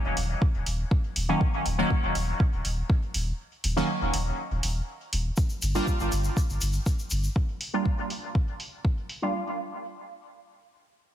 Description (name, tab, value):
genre	dub techno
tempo	121 BPM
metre	4/4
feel	straight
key	unclear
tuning	A4 = 440 Hz
part	warm sub bass	bass	0.0-7.3 s	Eb1 to G1	-28 LUFS	equal	sidechain pumping
part	electronic hi-hat	drums	0.2-9.2 s	none	-34 LUFS	right 1 dB	low-pass filter on hats, studio reverb
part	electronic kick drum	drums	0.4-8.9 s	none	-24 LUFS	equal	studio reverb
part	resonant sweep polysynth	stabs	1.3-9.3 s	Eb3 to F4	-29 LUFS	right 1 dB	chorus, phaser, dub echo
part	tube shaker	percussion	5.4-7.3 s	none	-36 LUFS	left 3 dB	none
room	light reverb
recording	heavily compressed radio sound, multiband compression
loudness	-25 LUFS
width	side -11 dB against mid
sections	0.0-5.4 A section; 5.4-9.3 B section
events	filter sweep on analog polysynth 0.0-5.4, 5.4-9.3; break 3.4-5.4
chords	none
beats	0.42 0.91 | 1.41 1.90 2.40 2.90 | 3.39 3.89 4.38 4.88 | 5.38 5.87 6.37 6.86 | 7.36 7.85 8.35 8.85